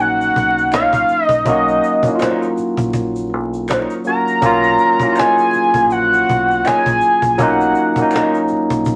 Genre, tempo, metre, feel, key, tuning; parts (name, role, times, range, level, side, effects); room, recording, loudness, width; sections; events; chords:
R&B, neo-soul; 81 BPM; 4/4; swing 60% on 16ths; A4 = 440 Hz
fat analog lead; melody; 0.0-8.1 s; D#5 to A#5; -17 LUFS; equal; chorus
barky tine electric piano; accompaniment; 0.0-9.0 s; F#3 to F#4; -20 LUFS; equal
deep dub fingered electric bass; bass; 0.0-9.0 s; A#1 to B1; -31 LUFS; equal
cajon; drums; 0.2-9.0 s; -25 LUFS; equal
egg shaker and finger snaps; percussion; 0.2-9.0 s; -40 LUFS; equal
electric guitar through a small old amp; second line; 0.7-8.4 s; D#4 to C#5; -25 LUFS; equal; wah
moderate studio reverb, RT60 0.8 s; vinyl crackle; -15 LUFS; mono
0.0-9.0 A section
0.0 Bmaj9